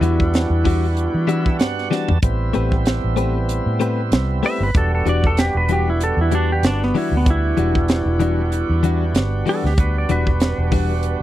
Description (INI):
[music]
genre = straight-eighth soul blues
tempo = 95 BPM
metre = 4/4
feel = swing 56% on 16ths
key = E minor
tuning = A4 = 441 Hz
[part]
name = clean lap steel guitar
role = melody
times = 0.0-11.2 s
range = B3 to E5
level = -23 LUFS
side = equal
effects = none
[part]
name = tonewheel organ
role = accompaniment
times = 0.0-11.2 s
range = G3 to A5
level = -25 LUFS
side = right 4 dB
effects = slow rotary speaker, overdrive
[part]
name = direct-recorded clean electric guitar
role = stabs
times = 0.0-10.9 s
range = E3 to B4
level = -22 LUFS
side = left 7 dB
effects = none
[part]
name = vintage muted fingered electric bass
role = bass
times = 0.0-11.1 s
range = E1 to E3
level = -20 LUFS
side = equal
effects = none
[part]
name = tight funk drum kit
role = drums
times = 0.0-11.2 s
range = hi-hat, kick drum, snare drum, toms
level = -20 LUFS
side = equal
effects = none
[sound]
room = little or no reverb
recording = dry, close 1970s-style studio recording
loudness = -16 LUFS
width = side -14 dB against mid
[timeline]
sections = 0.0-11.2 A section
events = electric slide guitar solo 0.0-11.2; tonewheel organ fill 1.0-2.2; drum fill 1.9-2.2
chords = 0.0 Em9; 2.2 Am9; 4.7 Em9